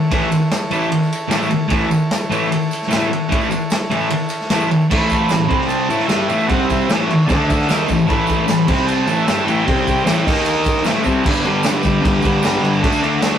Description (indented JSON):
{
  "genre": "garage rock duo or trio",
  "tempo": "151 BPM",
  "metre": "4/4",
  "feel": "straight",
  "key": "A mixolydian",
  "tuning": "A4 = 440 Hz",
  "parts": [
    { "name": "combo organ", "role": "sustained chords", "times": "0.0-13.4 s", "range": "C4 to D#5", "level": "-26 LUFS", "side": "right 1 dB", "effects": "none" },
    { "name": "thick fuzz guitar", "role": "riff", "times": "0.1-13.4 s", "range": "G2 to G4", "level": "-16 LUFS", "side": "equal", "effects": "distortion" },
    { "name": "vintage drum kit", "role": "drums", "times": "0.1-13.3 s", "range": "crash cymbal, kick drum, ride cymbal, snare drum", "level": "-20 LUFS", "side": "equal", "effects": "none" },
    { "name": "tambourine", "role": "percussion", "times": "0.3-13.3 s", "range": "none", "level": "-37 LUFS", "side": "right 4 dB", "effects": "none" },
    { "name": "mellow harmonica", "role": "melody", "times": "4.9-10.8 s", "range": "C#5 to B5", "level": "-24 LUFS", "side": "right 5 dB", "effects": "overdrive" }
  ],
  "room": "moderate studio reverb, RT60 0.7 s",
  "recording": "rough rehearsal-room recording, tube saturation",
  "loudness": "-14 LUFS",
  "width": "side -9 dB against mid",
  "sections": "0.0-4.9 A section; 4.9-11.3 B section; 11.3-13.4 C section",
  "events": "none",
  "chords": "0.0 A; 5.5 C5; 5.9 A; 6.5 C5; 6.9 A; 7.3 D5; 7.7 A; 8.7 C5; 9.1 A; 9.7 C5; 10.1 A5; 10.3 D#5; 10.9 A; 11.3 G; 12.8 D"
}